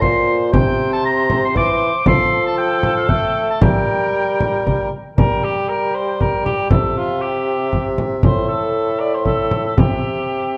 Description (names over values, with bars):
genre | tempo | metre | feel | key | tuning
classical, renaissance-style consort dance | 117 BPM | 3/4 | straight | G dorian | A4 = 443 Hz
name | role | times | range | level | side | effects
warm oboe | melody | 0.0-10.6 s | E5 to D6 | -26 LUFS | equal | none
warm cor anglais | second line | 0.0-10.6 s | F4 to D5 | -25 LUFS | equal | none
warm bassoon | bass | 0.0-10.6 s | A2 to A3 | -22 LUFS | equal | none
frame drum | percussion | 0.0-10.0 s | none | -20 LUFS | equal | none
room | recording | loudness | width
wet recital hall reverb, RT60 1.5 s | dark, warm production | -17 LUFS | mono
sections
0.0-5.2 A section; 5.2-10.6 B section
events
none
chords
0.0 N.C.; 0.5 C; 2.1 F; 3.6 Gm; 6.7 C; 8.2 A5; 9.8 C